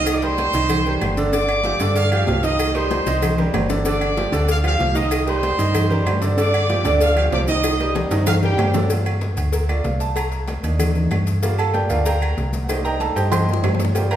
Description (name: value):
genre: latin, salsa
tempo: 190 BPM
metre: 4/4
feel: straight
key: G minor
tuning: A4 = 439 Hz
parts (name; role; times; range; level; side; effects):
- brilliant trumpet section; melody; 0.0-8.7 s; G4 to Eb6; -24 LUFS; right 1 dB; none
- bright upright piano; accompaniment; 0.0-14.2 s; D3 to C6; -22 LUFS; right 2 dB; none
- slap-like FM bass; bass; 0.0-14.2 s; G1 to G2; -21 LUFS; equal; none
- agogo bells and timbales; percussion; 0.1-14.2 s; none; -29 LUFS; right 4 dB; none
- claves; percussion; 0.1-14.2 s; none; -36 LUFS; left 5 dB; none
- congas; percussion; 0.1-14.2 s; none; -28 LUFS; left 1 dB; none
- cowbell and bongos; percussion; 0.1-14.1 s; none; -28 LUFS; left 5 dB; none
- maracas; percussion; 0.1-14.2 s; none; -36 LUFS; left 5 dB; none
room: wet recital hall reverb, RT60 1.5 s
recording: recorded in a church or concert hall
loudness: -17 LUFS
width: side -11 dB against mid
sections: 0.0-8.9 A section; 8.9-14.2 B section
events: drum fill 2.9-3.9, 7.6-8.9, 13.3-14.0; upright piano solo 8.9-14.2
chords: 0.1 Cm7; 1.3 G5; 2.6 Cm7; 3.9 G5; 5.1 Cm7; 6.4 G5; 7.6 Cm7; 8.9 Gm7; 10.2 Cm7; 11.4 Gm7; 12.7 Cm7